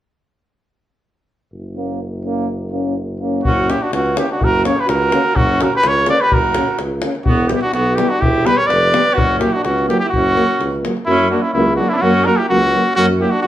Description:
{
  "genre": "balkan folk, Balkan brass band",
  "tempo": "126 BPM",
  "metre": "2/4",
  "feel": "straight",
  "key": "F# phrygian dominant",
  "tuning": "A4 = 441 Hz",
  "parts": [
    { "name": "warm tuba", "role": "bass", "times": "1.5-13.5 s", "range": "E1 to F#2", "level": "-22 LUFS", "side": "right 1 dB", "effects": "none" },
    { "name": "mellow euphonium", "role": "accompaniment", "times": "1.8-13.3 s", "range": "A#3 to C#4", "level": "-22 LUFS", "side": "left 2 dB", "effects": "none" },
    { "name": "warm trombone", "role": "accompaniment", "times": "1.8-13.5 s", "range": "F#3 to A#3", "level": "-24 LUFS", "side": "right 4 dB", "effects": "none" },
    { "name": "clear trumpet", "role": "melody", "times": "3.4-13.5 s", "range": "D4 to D5", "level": "-16 LUFS", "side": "equal", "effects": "none" },
    { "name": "davul", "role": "percussion", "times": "3.4-11.0 s", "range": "none", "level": "-21 LUFS", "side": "left 1 dB", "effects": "none" },
    { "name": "bright alto saxophone", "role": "second line", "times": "3.5-13.4 s", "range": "B3 to B4", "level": "-22 LUFS", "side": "right 3 dB", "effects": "none" }
  ],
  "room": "wet large studio reverb, RT60 0.9 s",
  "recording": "band playing live in one room",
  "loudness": "-13 LUFS",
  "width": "side -12 dB against mid",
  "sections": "1.5-3.4 A section; 3.4-11.1 B section; 11.1-13.5 B section",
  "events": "none",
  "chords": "1.5 F#; 7.3 Em; 9.2 F#",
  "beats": "| 1.52 2.00 | 2.48 2.96 | 3.44 3.92 | 4.40 4.88 | 5.35 5.83 | 6.31 6.79 | 7.26 7.74 | 8.22 8.70 | 9.17 9.65 | 10.12 10.60 | 11.07 11.55 | 12.03 12.50 | 12.97 13.45"
}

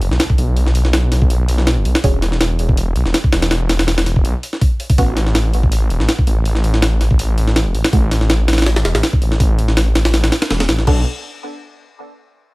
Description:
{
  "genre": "drum and bass, jungle",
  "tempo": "163 BPM",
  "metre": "4/4",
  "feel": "swing 54% on 16ths",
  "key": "B minor",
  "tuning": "A4 = 438 Hz",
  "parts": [
    { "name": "detuned saw bass", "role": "bass", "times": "0.0-11.0 s", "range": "E1 to B1", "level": "-15 LUFS", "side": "equal", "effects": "none" },
    { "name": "jungle sampler-style drum kit", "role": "drums", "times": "0.0-11.0 s", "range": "crash cymbal, hi-hat, kick drum, snare drum", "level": "-16 LUFS", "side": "equal", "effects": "none" },
    { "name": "impact", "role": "sound effects", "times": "0.0-0.6 s", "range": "none", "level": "barely audible", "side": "none", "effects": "none" },
    { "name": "filtered dub chord stab", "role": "stabs", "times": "2.0-2.2, 5.0-5.1, 7.9-8.1, 10.9-11.0 s", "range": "A3 to A4", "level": "-25 LUFS", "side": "right 1 dB", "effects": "analog chorus, dub echo" }
  ],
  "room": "digital ambience",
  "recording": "none",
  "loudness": "-13 LUFS",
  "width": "side -23 dB against mid",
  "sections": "0.0-10.9 A section; 10.9-12.3 B section",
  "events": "impact 0.0-0.6; filter sweep on synth stab 0.0-10.9",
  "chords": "0.0 N.C.; 7.9 F#m7 (rootless); 10.9 Bm7",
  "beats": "0.20 | 0.57 0.94 1.30 1.67 | 2.04 2.41 2.77 3.14 | 3.51 3.88 4.25 4.62 | 4.98 5.35 5.72 6.09 | 6.46 6.82 7.19 7.56 | 7.93 8.30 8.66 9.03 | 9.40 9.77 10.14 10.51 | 10.87"
}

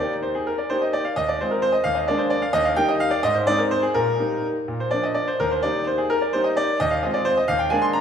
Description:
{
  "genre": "classical-period piano sonatina",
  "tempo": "86 BPM (dotted quarters)",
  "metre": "6/8",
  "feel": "rubato",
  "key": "Eb major",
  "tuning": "A4 = 440 Hz",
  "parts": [
    { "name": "bright concert grand piano", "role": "solo", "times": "0.0-8.0 s", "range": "Eb2 to C6", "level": "-19 LUFS", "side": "equal", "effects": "none" }
  ],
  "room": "wet recital hall reverb, RT60 1.8 s",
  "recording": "recorded in a church or concert hall",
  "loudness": "-19 LUFS",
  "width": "side -8 dB against mid",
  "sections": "0.0-8.0 A section",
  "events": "none",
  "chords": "0.0 Eb; 1.2 Fm7/Eb; 2.5 Eb; 3.2 Ab; 3.9 Eb/Bb; 4.7 Bb; 5.4 Eb; 6.8 Fm7/Eb; 7.5 Bb7/Eb",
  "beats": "0.45 | 1.16 1.85 | 2.54 3.24 | 3.95 4.67 | 5.39 6.10 | 6.79 7.48"
}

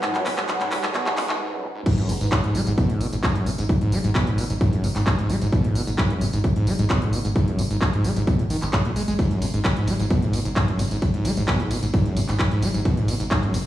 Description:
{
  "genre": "driving peak-time techno",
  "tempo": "131 BPM",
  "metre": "4/4",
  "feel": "straight",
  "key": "G# minor",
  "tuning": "A4 = 440 Hz",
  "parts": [
    { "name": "overdriven acid bass", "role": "riff", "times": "0.0-13.6 s", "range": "F#2 to G#3", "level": "-24 LUFS", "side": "equal", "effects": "distortion, sidechain pumping, tape echo" },
    { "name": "techno drum kit", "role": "drums", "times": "0.0-13.6 s", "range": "crash cymbal, handclaps, hi-hat, ride cymbal, tambourine", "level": "-28 LUFS", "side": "equal", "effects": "sidechain pumping on hats, sidechain pumping on cymbals, sidechain pumping on perc" },
    { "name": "riser", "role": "sound effects", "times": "0.0-1.4 s", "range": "none", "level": "-33 LUFS", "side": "equal", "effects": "none" },
    { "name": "ethereal airy pad", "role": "texture", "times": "0.0-1.4 s", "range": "D#4 to F#5", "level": "-32 LUFS", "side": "right 1 dB", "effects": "ensemble chorus, built-in reverb, phaser, sidechain pumping" },
    { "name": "electronic kick drum", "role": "drums", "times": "1.9-13.4 s", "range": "none", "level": "-22 LUFS", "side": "equal", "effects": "overdrive" },
    { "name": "saturated sub bass", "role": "bass", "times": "2.0-13.7 s", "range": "G#1", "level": "-28 LUFS", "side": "equal", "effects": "sidechain pumping, low-pass filter" }
  ],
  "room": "light reverb, digital ambience",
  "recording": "played on a big sound system in a bare room, stone room reverb, high-pass filter, small room ambience",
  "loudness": "-20 LUFS",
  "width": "side -14 dB against mid",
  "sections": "0.0-1.9 A section; 1.9-13.7 B section",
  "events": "build-up 0.0-1.9; drum fill 0.0-1.4; riser 0.0-1.4; break 1.4-1.9; drop 1.9-13.7",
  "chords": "0.0 G#m",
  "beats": "| 0.03 0.49 0.94 1.40 | 1.86 2.32 2.78 3.23 | 3.69 4.15 4.61 5.07 | 5.53 5.98 6.44 6.90 | 7.36 7.82 8.27 8.73 | 9.19 9.65 10.11 10.56 | 11.02 11.48 11.94 12.39 | 12.85 13.31"
}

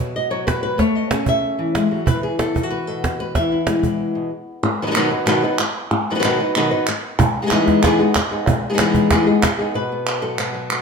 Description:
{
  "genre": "flamenco",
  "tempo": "187 BPM",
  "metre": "4/4",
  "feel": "straight",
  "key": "E major",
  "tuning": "A4 = 441 Hz",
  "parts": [
    { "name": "flamenco guitar", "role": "melody", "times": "0.0-10.8 s", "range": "B2 to E5", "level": "-18 LUFS", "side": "left 2 dB", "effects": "none" },
    { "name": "cajon", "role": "percussion", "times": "0.5-4.0, 7.2-9.8 s", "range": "none", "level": "-21 LUFS", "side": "right 3 dB", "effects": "none" },
    { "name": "palmas hand claps", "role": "percussion", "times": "4.6-10.8 s", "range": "none", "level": "-23 LUFS", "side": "right 2 dB", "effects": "none" }
  ],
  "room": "wet stone room reverb, RT60 1.3 s",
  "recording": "none",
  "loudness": "-16 LUFS",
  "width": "side -5 dB against mid",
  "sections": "0.0-4.6 A section; 4.6-9.8 B section; 9.8-10.8 C section",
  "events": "stop 4.3-4.6",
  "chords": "0.0 B5; 0.8 Amaj7; 2.1 Esus2; 3.4 E; 4.6 B; 7.2 Emaj7; 9.8 B5",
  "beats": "0.14 0.46 | 0.79 1.11 1.43 1.75 | 2.07 2.39 2.71 3.03 | 3.35 3.67 3.99 4.31 | 4.63 4.95 5.27 5.59 | 5.91 6.23 6.55 6.87 | 7.19 7.51 7.83 8.15 | 8.47 8.79 9.11 9.43 | 9.75 10.07 10.39 10.71"
}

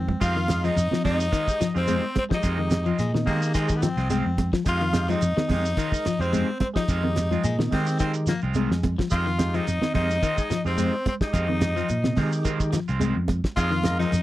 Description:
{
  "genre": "afrobeat",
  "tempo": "108 BPM",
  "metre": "4/4",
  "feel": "swing 54% on 16ths",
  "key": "F minor",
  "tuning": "A4 = 440 Hz",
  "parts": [
    { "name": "raspy baritone saxophone", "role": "second line", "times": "0.0-9.0 s", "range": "Ab3 to C4", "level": "-32 LUFS", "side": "left 3 dB", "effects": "none" },
    { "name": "electric guitar at the edge of break-up", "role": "arpeggios", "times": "0.0-14.2 s", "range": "C3 to Ab3", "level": "-29 LUFS", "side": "left 6 dB", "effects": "none" },
    { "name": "fingered electric bass", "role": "bass", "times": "0.0-14.2 s", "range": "C2 to Eb3", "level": "-26 LUFS", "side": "equal", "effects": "none" },
    { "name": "electric guitar at the edge of break-up", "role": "stabs", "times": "0.1-14.2 s", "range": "Eb3 to F4", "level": "-34 LUFS", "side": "right 6 dB", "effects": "lush chorus" },
    { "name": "cloth-damped thuddy drum kit", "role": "drums", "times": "0.1-14.2 s", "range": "crash cymbal, hi-hat, kick drum, snare drum", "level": "-27 LUFS", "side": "equal", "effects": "none" },
    { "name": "congas", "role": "percussion", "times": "0.1-14.2 s", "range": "none", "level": "-30 LUFS", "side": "right 4 dB", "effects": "none" },
    { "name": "raspy tenor saxophone", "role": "melody", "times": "0.2-14.2 s", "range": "C4 to F4", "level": "-29 LUFS", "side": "left 2 dB", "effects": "none" },
    { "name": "breathy trumpet", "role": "second line", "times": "0.2-14.2 s", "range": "C5 to F5", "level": "-34 LUFS", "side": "right 2 dB", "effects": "none" },
    { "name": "percussive tonewheel organ", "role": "accompaniment", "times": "0.2-14.2 s", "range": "Ab3 to Bb4", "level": "-33 LUFS", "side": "right 1 dB", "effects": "slow rotary speaker, overdrive" },
    { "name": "shekere", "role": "percussion", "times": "0.2-14.2 s", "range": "none", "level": "-34 LUFS", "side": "right 2 dB", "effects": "none" }
  ],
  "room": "little or no reverb",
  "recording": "dry, close 1970s-style studio recording",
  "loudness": "-22 LUFS",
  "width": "side -15 dB against mid",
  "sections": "0.2-14.2 A section",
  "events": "drum fill 0.0",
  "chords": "0.2 Fm7",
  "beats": "| 0.21 0.77 1.32 1.88 | 2.44 2.99 3.55 4.11 | 4.66 5.22 5.78 6.33 | 6.89 7.44 8.00 8.56 | 9.11 9.67 10.23 10.78 | 11.34 11.90 12.46 13.01 | 13.57 14.13"
}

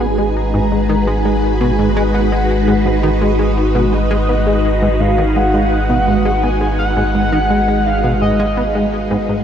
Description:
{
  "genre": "ambient, sequencer-driven space music",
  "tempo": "84 BPM",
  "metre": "4/4",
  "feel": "straight",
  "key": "G# minor",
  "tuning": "A4 = 440 Hz",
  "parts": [
    { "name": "pulse-width lead", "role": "melody", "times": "0.0-8.9 s", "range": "D#5 to A#5", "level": "-21 LUFS", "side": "equal", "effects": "chorus, shimmer reverb, ping-pong delay" },
    { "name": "phased string machine", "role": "sustained chords", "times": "0.0-9.4 s", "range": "G#3 to G#5", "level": "-17 LUFS", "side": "equal", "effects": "ensemble chorus, phaser, shimmer reverb" },
    { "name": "plucky analog bass", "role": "riff", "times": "0.0-9.4 s", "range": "G#2 to B3", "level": "-19 LUFS", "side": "equal", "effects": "analog chorus, shimmer reverb, ping-pong delay" },
    { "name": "warm sub bass", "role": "bass", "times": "0.0-9.4 s", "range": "G#1", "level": "-18 LUFS", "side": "equal", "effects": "none" }
  ],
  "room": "wet huge ambient reverb, RT60 7.0 s",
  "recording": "dreamy mix soaked in reverb",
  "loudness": "-12 LUFS",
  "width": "side -9 dB against mid",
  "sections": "0.0-9.4 A section",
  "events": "none",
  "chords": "0.0 G#m7",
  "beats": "0.36 | 1.07 1.79 2.50 3.22 | 3.93 4.64 5.36 6.07 | 6.79 7.50 8.22 8.93"
}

